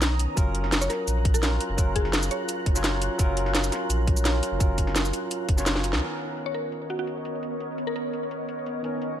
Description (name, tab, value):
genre	liquid drum and bass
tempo	170 BPM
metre	4/4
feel	straight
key	F# major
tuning	A4 = 440 Hz
part	barky tine electric piano	accompaniment	0.0-9.2 s	D#3 to C#5	-32 LUFS	equal	vintage 12-bit sampler grit, dub echo
part	glassy FM pad	sustained chords	0.0-9.2 s	B3 to F#6	-32 LUFS	right 1 dB	ensemble chorus, built-in reverb, sidechain pumping
part	warm sub bass	bass	0.0-6.0 s	F#1 to C#2	-27 LUFS	equal	none
part	drum and bass drum kit	drums	0.0-9.1 s	cabasa, crash cymbal, hi-hat, snare drum	-28 LUFS	equal	low-pass filter on hats, low-pass filter on perc, low-pass filter on snare, low-pass filter on cymbals, low-pass filter on room
part	electronic kick drum	drums	0.4-5.6 s	none	-23 LUFS	equal	none
part	mallet-like synth pluck	melody	0.8-2.7, 6.5-8.3 s	F#4 to C#5	-34 LUFS	equal	chorus, dub echo
room	little or no reverb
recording	none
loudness	-23 LUFS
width	side -10 dB against mid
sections	0.0-6.0 A section; 6.0-9.2 B section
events	drop 0.0-6.0; drum fill 5.8; band accent 5.9; filter sweep on ambient pad 6.0-9.2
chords	0.4 F#maj7; 6.0 Bmaj9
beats	0.02 | 0.37 0.72 1.07 1.43 | 1.78 2.13 2.49 2.84 | 3.19 3.55 3.90 4.25 | 4.61 4.96 5.31 5.66 | 6.02 6.37 6.72 7.08 | 7.43 7.78 8.13 8.49 | 8.84 9.19